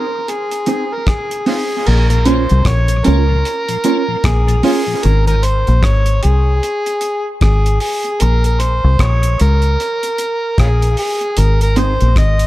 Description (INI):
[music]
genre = dub reggae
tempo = 76 BPM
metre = 4/4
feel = swing 60% on 16ths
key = Bb minor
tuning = A4 = 438 Hz
[part]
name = overdriven harmonica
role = melody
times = 0.0-12.5 s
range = Db4 to Eb5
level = -18 LUFS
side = equal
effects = dub echo
[part]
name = mellow electric guitar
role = accompaniment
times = 0.0-4.8, 11.8-11.9 s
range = C4 to Db5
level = -19 LUFS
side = right 4 dB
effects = dub echo
[part]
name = cloth-damped thuddy drum kit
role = drums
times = 0.3-12.5 s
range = crash cymbal, hi-hat, kick drum, rim click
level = -20 LUFS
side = equal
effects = none
[part]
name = deep dub fingered electric bass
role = bass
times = 1.9-12.5 s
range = Ab1 to Db2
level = -12 LUFS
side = equal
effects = none
[part]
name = tonewheel organ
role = accompaniment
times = 2.1-5.4 s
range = Ab2 to F4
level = -24 LUFS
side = left 5 dB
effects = chorus vibrato, slow rotary speaker
[sound]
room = little or no reverb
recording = none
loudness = -12 LUFS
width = side -16 dB against mid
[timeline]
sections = 0.0-1.9 A section; 1.9-12.5 B section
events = none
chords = 0.0 Ab; 1.9 Bbm; 5.0 N.C.; 11.4 Ab